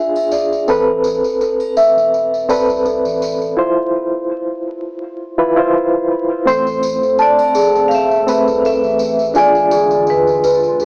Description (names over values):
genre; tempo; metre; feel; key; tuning
trip hop; 83 BPM; 4/4; swing 56% on 16ths; A harmonic minor; A4 = 440 Hz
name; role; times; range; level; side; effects
reed electric piano; accompaniment; 0.0-10.8 s; A3 to C5; -19 LUFS; equal; tremolo, tape echo
large celesta; arpeggios; 0.0-10.8 s; G#4 to A5; -18 LUFS; equal; analog delay
triangle and tambourine; percussion; 0.2-10.8 s; none; -37 LUFS; equal; none
soft dub sub bass; bass; 0.7-10.8 s; E1 to C2; -38 LUFS; equal; none
vibraphone with medium hard mallets; melody; 6.5-10.8 s; B4 to F5; -19 LUFS; equal; cassette tape, tape echo
warbly tape-like pad; sustained chords; 7.1-10.8 s; D3 to A4; -27 LUFS; equal; chorus, built-in reverb
room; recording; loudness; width
wet studio reverb, RT60 0.6 s; home recording on cassette, vinyl crackle, small speaker sound; -15 LUFS; mono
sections
0.0-6.5 A section; 6.5-10.8 B section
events
break 3.6-6.5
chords
0.0 E7b9; 0.7 Amadd9; 3.6 Cadd11/E; 6.5 Amadd9; 9.4 E7b9